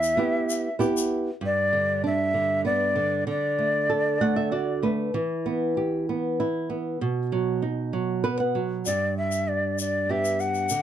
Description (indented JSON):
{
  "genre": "andean folk, Andean ensemble",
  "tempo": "97 BPM",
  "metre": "3/4",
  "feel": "straight",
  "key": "unclear",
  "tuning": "A4 = 440 Hz",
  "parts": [
    { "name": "breathy large quena", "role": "melody", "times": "0.0-4.8, 8.9-10.8 s", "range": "D5 to F#5", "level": "-24 LUFS", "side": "left 1 dB", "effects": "plate reverb" },
    { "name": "flamenco guitar", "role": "accompaniment", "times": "0.0-10.8 s", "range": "E2 to F#5", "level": "-25 LUFS", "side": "right 2 dB", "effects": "none" },
    { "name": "egg shaker", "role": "percussion", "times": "0.0-1.1, 8.9-10.8 s", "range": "none", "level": "-34 LUFS", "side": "left 7 dB", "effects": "none" }
  ],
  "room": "light reverb",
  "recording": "dark, warm production",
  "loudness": "-23 LUFS",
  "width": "side -10 dB against mid",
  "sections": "0.0-1.4 A section; 1.4-8.9 B section; 8.9-10.8 C section",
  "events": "nylon-string guitar fill 3.9-5.1, 7.9-8.9",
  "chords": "0.0 Em; 1.4 G; 3.3 D; 5.1 Em; 7.0 B; 8.9 G"
}